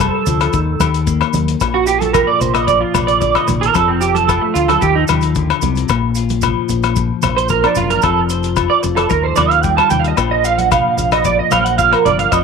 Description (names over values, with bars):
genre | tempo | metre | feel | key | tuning
highlife guitar band | 112 BPM | 4/4 | straight | Bb major | A4 = 438 Hz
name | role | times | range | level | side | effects
clean electric guitar | accompaniment | 0.0-12.4 s | Bb2 to C5 | -21 LUFS | left 14 dB | none
electric guitar through a small old amp | arpeggios | 0.0-12.4 s | A3 to A5 | -15 LUFS | right 9 dB | ensemble chorus, tape echo
fingered electric bass | bass | 0.0-12.4 s | F1 to Eb2 | -19 LUFS | left 2 dB | none
cloth-damped thuddy drum kit | drums | 0.0-12.4 s | hi-hat, kick drum, rim click | -23 LUFS | left 6 dB | none
agogo bells | percussion | 0.0-12.4 s | none | -21 LUFS | left 18 dB | none
congas | percussion | 0.0-12.2 s | none | -24 LUFS | right 8 dB | none
maracas | percussion | 0.0-12.4 s | none | -29 LUFS | right 12 dB | none
room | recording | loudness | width
light reverb | 1960s-style stereo with parts hard left and right | -12 LUFS | side -5 dB against mid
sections
0.0-12.4 A section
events
clean electric guitar solo 0.0-12.4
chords
0.0 Fadd9; 0.5 Eb; 1.6 Bb; 3.8 F69; 4.8 Ebsus2; 5.9 Bbadd9; 8.0 F5; 9.1 Ebadd9; 10.2 Bbadd9